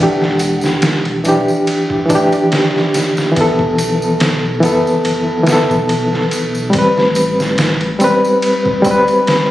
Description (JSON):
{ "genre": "trip hop", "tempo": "71 BPM", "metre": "4/4", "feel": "swing 54% on 16ths", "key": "E minor", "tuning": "A4 = 440 Hz", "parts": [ { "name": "barky reed electric piano", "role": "accompaniment", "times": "0.0-9.5 s", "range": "E3 to B4", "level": "-12 LUFS", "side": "equal", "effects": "overdrive, fast tremolo, tape echo" }, { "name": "dark detuned saw bass", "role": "bass", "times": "0.0-9.1 s", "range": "E1 to D2", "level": "-24 LUFS", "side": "equal", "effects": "none" }, { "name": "trip hop sampler-style drum kit", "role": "drums", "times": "0.2-9.5 s", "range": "kick drum, ride cymbal, snare drum", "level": "-19 LUFS", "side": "equal", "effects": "small room ambience" }, { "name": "tambourine", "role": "percussion", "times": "0.4-9.5 s", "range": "none", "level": "-30 LUFS", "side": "equal", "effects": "none" } ], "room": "moderate echo chamber reverb, RT60 2.6 s", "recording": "recorded on a phone in the room, studio reverb, vinyl crackle, compression", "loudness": "-12 LUFS", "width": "side -14 dB against mid", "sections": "0.0-9.5 A section", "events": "none", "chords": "0.0 Em7; 3.4 B7sus4; 6.7 Am9" }